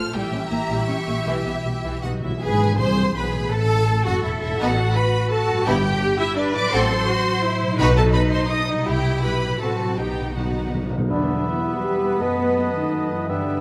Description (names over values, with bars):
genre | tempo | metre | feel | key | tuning
classical, dramatic, fast romantic movement for symphony orchestra | 166 BPM | 3/4 | rubato | E minor | A4 = 439 Hz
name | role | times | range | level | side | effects
warm symphonic violin section | melody | 0.0-13.6 s | D5 to F6 | -31 LUFS | equal | none
clear symphonic violin section | second line | 0.0-13.6 s | B3 to F#5 | -31 LUFS | equal | none
rich symphonic viola section | accompaniment | 0.0-13.6 s | E3 to D#5 | -29 LUFS | equal | none
concert harp | arpeggios | 0.0-13.6 s | E2 to G5 | -31 LUFS | equal | none
rich studio cello section | bass | 0.0-13.6 s | A#2 to B4 | -30 LUFS | equal | none
rich symphonic double bass section | bass | 0.0-13.6 s | E1 to G2 | -27 LUFS | equal | none
timpani | percussion | 2.0-2.4, 7.8-11.6 s | E2 to B2 | -32 LUFS | equal | none
bright clarinet | second line | 11.1-13.6 s | B4 | -35 LUFS | equal | none
mellow concert flute | second line | 11.1-13.6 s | G5 to B5 | -35 LUFS | equal | none
warm oboe | second line | 11.1-13.6 s | D#5 to E5 | -34 LUFS | equal | none
clear bassoon | accompaniment | 11.1-13.6 s | B3 | -32 LUFS | equal | none
mellow French horn section | sustained chords | 11.1-13.6 s | D4 to B4 | -26 LUFS | equal | none
room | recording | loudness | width
moderate scoring stage reverb, RT60 2.0 s | none | -21 LUFS | mono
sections
0.0-2.4 A section; 2.4-11.1 B section; 11.1-13.6 C section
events
timpani fill 2.0-2.4, 10.0-11.1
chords
0.1 A#dim7; 1.3 Em/B; 2.0 B; 2.4 E7/G#; 3.5 Am; 4.6 B7/A; 5.7 Em/G; 6.7 F#dim/A; 7.8 B; 8.9 C; 9.6 F#dim/A; 10.0 B; 11.1 Em; 12.2 B7/F#